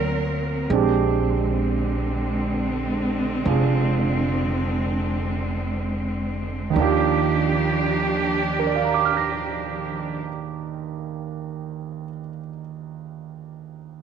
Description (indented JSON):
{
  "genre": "jazz ballad",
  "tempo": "32-48 BPM",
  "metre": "4/4",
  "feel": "swing 68% on 8ths",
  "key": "Eb major",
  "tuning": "A4 = 439 Hz",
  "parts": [
    { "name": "warm concert grand piano", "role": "accompaniment", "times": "0.0-14.0 s", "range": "Eb2 to Bb6", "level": "-25 LUFS", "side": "right 10 dB", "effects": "none" },
    { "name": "warm studio cello section", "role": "sustained chords", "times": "0.0-10.2 s", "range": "D3 to A#4", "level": "-25 LUFS", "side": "equal", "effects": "none" },
    { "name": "upright bass", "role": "bass", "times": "0.0-10.2 s", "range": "F1 to Eb2", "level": "-26 LUFS", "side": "left 1 dB", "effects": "none" }
  ],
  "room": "moderate echo chamber reverb, RT60 2.1 s",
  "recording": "1960s-style stereo",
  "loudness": "-21 LUFS",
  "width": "side -7 dB against mid",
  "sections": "0.7-6.7 A section; 6.7-14.0 B section",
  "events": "slowing down 0.0-6.7",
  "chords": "0.0 D7alt; 0.7 Bb13; 6.7 Ebmaj9",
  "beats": "| 0.69 2.01 3.44 5.00 | 6.74 8.59 10.43 12.28"
}